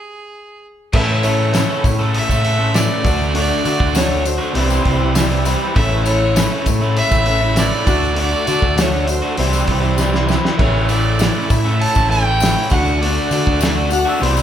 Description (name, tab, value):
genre	folk rock and heartland rock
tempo	99 BPM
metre	4/4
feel	straight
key	A mixolydian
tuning	A4 = 439 Hz
part	clear fiddle	melody	0.0-14.2 s	G#4 to A5	-21 LUFS	right 2 dB	none
part	picked swing-style acoustic guitar	accompaniment	0.9-14.4 s	A2 to F#4	-24 LUFS	left 4 dB	none
part	tonewheel organ	sustained chords	0.9-14.4 s	C#3 to A4	-29 LUFS	right 1 dB	slow rotary speaker
part	crunchy overdriven guitar	riff	0.9-14.4 s	A2 to A4	-20 LUFS	equal	spring reverb
part	picked electric bass	bass	0.9-14.4 s	A1 to D3	-19 LUFS	equal	none
part	cloth-damped thuddy drum kit	drums	0.9-14.4 s	crash cymbal, hi-hat, kick drum, snare drum	-20 LUFS	equal	none
part	tambourine	percussion	1.2-14.4 s	none	-32 LUFS	left 8 dB	none
part	clear harmonica	second line	13.9-14.4 s	B4 to F#5	-21 LUFS	left 4 dB	none
room	moderate large studio reverb, RT60 1.2 s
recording	band playing live in one room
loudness	-14 LUFS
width	side -10 dB against mid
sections	0.9-14.4 A section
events	stop 0.0-0.9; drum fill 10.0-10.6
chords	0.0 N.C.; 0.9 A; 3.0 D; 4.5 C; 5.8 A; 7.9 D; 9.4 C; 10.6 A; 12.7 D